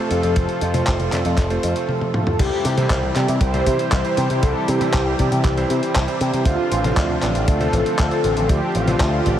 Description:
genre	italo disco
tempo	118 BPM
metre	4/4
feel	straight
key	unclear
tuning	A4 = 438 Hz
part	mellow synth brass	melody	0.0-9.4 s	F4 to C5	-24 LUFS	left 1 dB	chorus, ping-pong delay
part	warm analog pad	sustained chords	0.0-9.4 s	C3 to A4	-24 LUFS	equal	chorus, tremolo
part	bright electric grand piano	stabs	0.0-9.4 s	C3 to D5	-27 LUFS	right 3 dB	analog delay
part	picked electric bass with an envelope filter	bass	0.1-9.4 s	F1 to C3	-22 LUFS	equal	none
part	dusty soul sampler-style drum kit	drums	0.1-9.4 s	crash cymbal, handclaps, hi-hat, toms	-25 LUFS	left 1 dB	none
part	kick drum	drums	0.4-9.4 s	none	-20 LUFS	equal	none
room	moderate huge ambient reverb, RT60 7.9 s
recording	dreamy mix soaked in reverb, vinyl crackle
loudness	-17 LUFS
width	side -10 dB against mid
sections	0.0-2.4 A section; 2.4-9.4 B section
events	drum fill 1.9-2.4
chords	0.0 F; 2.4 C; 6.5 Dm7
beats	| 0.36 0.87 1.38 1.89 | 2.40 2.90 3.41 3.92 | 4.43 4.94 5.45 5.95 | 6.46 6.97 7.48 7.99 | 8.50 9.01

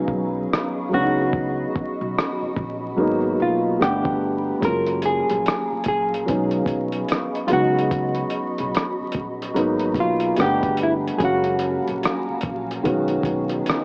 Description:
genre	lo-fi hip hop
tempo	73 BPM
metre	4/4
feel	swing 64% on 16ths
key	F# major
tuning	A4 = 439 Hz
part	hollow-body jazz guitar	melody	0.0-13.8 s	E4 to A#4	-26 LUFS	equal	low-pass filter
part	felt-muted upright piano	accompaniment	0.0-13.8 s	D#3 to F#5	-26 LUFS	equal	low-pass filter
part	granular cloud pad	sustained chords	0.0-13.8 s	F#3 to C#6	-32 LUFS	equal	built-in reverb, low-pass filter
part	upright bass	bass	0.0-13.6 s	F#1 to C#2	-34 LUFS	equal	none
part	dusty soul sampler-style drum kit	drums	0.1-13.8 s	hi-hat, kick drum, rim click	-29 LUFS	equal	vintage 12-bit sampler grit
room	moderate plate reverb, RT60 3.1 s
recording	worn, warbling old tape, cassette tape, vinyl crackle, warbly pitch drift, small speaker sound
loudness	-22 LUFS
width	mono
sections	0.0-13.8 A section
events	break 0.0-4.6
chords	0.0 B69; 0.9 C#9sus4; 3.0 G#m9; 3.8 Gmaj9; 4.6 F#maj9; 6.3 B69; 7.5 C#9sus4; 9.6 G#m9; 10.4 Gmaj9; 11.2 F#maj9; 12.8 B69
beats	0.52 | 1.34 2.16 2.99 3.81 | 4.63 5.45 6.27 7.09 | 7.92 8.74 9.56 10.38 | 11.21 12.03 12.85 13.67

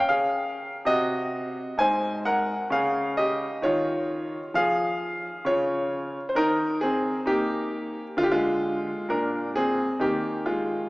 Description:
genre	classical, baroque-style suite movement for grand piano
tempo	66 BPM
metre	4/4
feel	rubato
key	unclear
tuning	A4 = 440 Hz
part	warm concert grand piano	solo	0.0-10.9 s	Ab2 to Ab5	-23 LUFS	equal	none
room	wet church reverb, RT60 3.6 s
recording	small speaker sound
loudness	-23 LUFS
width	side -22 dB against mid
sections	0.0-10.9 A section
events	none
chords	0.0 Db; 0.8 Ab7/C; 2.7 Db; 6.3 Eb; 8.2 Bb7/D; 10.0 Eb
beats	0.84 1.76 | 2.69 3.61 4.53 5.44 | 6.34 7.26 8.16 9.07 | 9.98 10.89

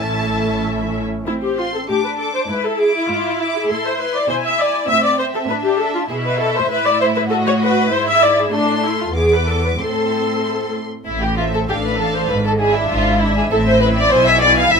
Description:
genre	quick classical-period movement for string orchestra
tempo	98 BPM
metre	2/4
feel	rubato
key	A minor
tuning	A4 = 440 Hz
part	rich symphonic violin section	melody	0.0-14.8 s	D#5 to D6	-26 LUFS	equal	none
part	warm symphonic violin section	second line	0.0-14.8 s	A3 to F5	-20 LUFS	equal	none
part	warm symphonic viola section	accompaniment	0.0-14.8 s	B3 to E5	-18 LUFS	left 2 dB	none
part	rich symphonic cello section	bass	0.0-14.8 s	E2 to B2	-23 LUFS	right 1 dB	none
part	rich symphonic double bass section	bass	0.0-1.0, 11.1-14.8 s	G#1 to B1	-23 LUFS	right 2 dB	none
room	moderate studio reverb, RT60 0.6 s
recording	minimal, uncompressed stereo recording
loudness	-15 LUFS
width	side -5 dB against mid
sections	0.0-1.3 A section; 1.3-11.1 B section; 11.1-14.8 B section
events	none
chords	0.0 A; 1.3 Am; 1.9 D5/A; 2.5 E7/G#; 3.7 Am; 4.3 E7/B; 4.9 Am; 6.1 E5/B; 6.7 A5; 7.3 B7/A; 7.9 E/G#; 8.5 Am; 9.2 E5; 9.8 Am; 11.7 Dm/A; 12.3 E7/G#; 13.5 Am; 14.1 E/B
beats	0.62 | 1.26 1.88 | 2.48 3.09 | 3.69 4.28 | 4.88 5.48 | 6.09 6.69 | 7.30 7.91 | 8.53 9.15 | 9.79 10.43 | 11.06 11.69 | 12.30 12.90 | 13.52 14.13 | 14.73

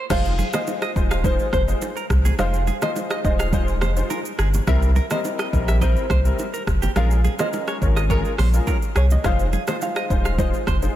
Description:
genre	afrobeats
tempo	105 BPM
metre	4/4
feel	straight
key	F minor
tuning	A4 = 440 Hz
part	direct-recorded clean electric guitar	riff	0.0-10.8 s	G4 to F5	-32 LUFS	right 5 dB	wide subtle chorus, diffuse ambient delay
part	soft round pluck	melody	0.1-11.0 s	Bb4 to F5	-28 LUFS	equal	chorus, diffuse ambient delay
part	clear grand piano	accompaniment	0.1-11.0 s	G3 to C5	-28 LUFS	left 3 dB	ensemble chorus
part	saturated sub bass	bass	0.1-10.9 s	Eb1 to C2	-20 LUFS	equal	none
part	afro-pop drum kit	drums	0.1-11.0 s	crash cymbal, hi-hat, kick drum, rim click, shaker	-24 LUFS	equal	none
part	congas and bongos	percussion	0.1-10.8 s	none	-31 LUFS	right 5 dB	none
room	light reverb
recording	none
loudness	-18 LUFS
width	side -13 dB against mid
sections	0.1-11.0 A section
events	none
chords	0.1 Fm7; 4.7 C7; 7.0 Bbm7; 9.2 Fm7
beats	| 0.10 0.67 1.25 1.82 | 2.39 2.96 3.53 4.10 | 4.67 5.25 5.82 6.39 | 6.96 7.53 8.10 8.67 | 9.25 9.82 10.39

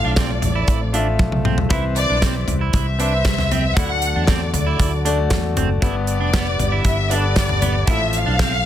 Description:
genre	piano-driven pop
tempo	117 BPM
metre	4/4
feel	straight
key	C major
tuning	A4 = 439 Hz
part	warm studio violin section	melody	0.0-8.7 s	D5 to F#5	-23 LUFS	left 2 dB	none
part	bright concert grand piano	accompaniment	0.0-8.7 s	G2 to F5	-26 LUFS	left 5 dB	none
part	tonewheel organ	sustained chords	0.0-8.7 s	D3 to B4	-33 LUFS	right 1 dB	none
part	electric guitar at the edge of break-up	riff	0.0-8.5 s	B3 to E4	-27 LUFS	right 9 dB	none
part	fretless electric bass	bass	0.0-8.7 s	F1 to E2	-21 LUFS	equal	none
part	modern studio drum kit	drums	0.2-8.5 s	hi-hat, kick drum, snare drum, toms	-20 LUFS	equal	soft clipping on kick
room	little or no reverb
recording	dense, heavily limited modern master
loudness	-16 LUFS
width	side -11 dB against mid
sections	0.0-8.7 A section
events	drum fill 1.2-1.7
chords	0.0 Fmaj7/A; 1.7 Cmaj7; 3.8 D; 5.8 G; 7.9 Fmaj7/A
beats	0.17 0.68 1.20 | 1.71 2.23 2.74 3.25 | 3.77 4.28 4.79 5.31 | 5.82 6.34 6.85 7.36 | 7.88 8.39

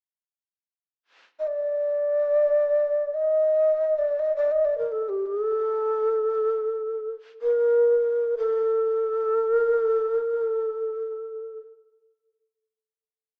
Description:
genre	japanese traditional, Japanese chamber music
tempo	free time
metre	none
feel	none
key	unclear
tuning	A4 = 441 Hz
part	breathy mellow long shakuhachi	solo	1.4-11.6 s	G4 to Eb5	-24 LUFS	equal	none
room	moderate recital hall reverb, RT60 1.5 s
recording	small speaker sound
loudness	-24 LUFS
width	mono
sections	0.2-13.4 A section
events	none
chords	none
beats	free time

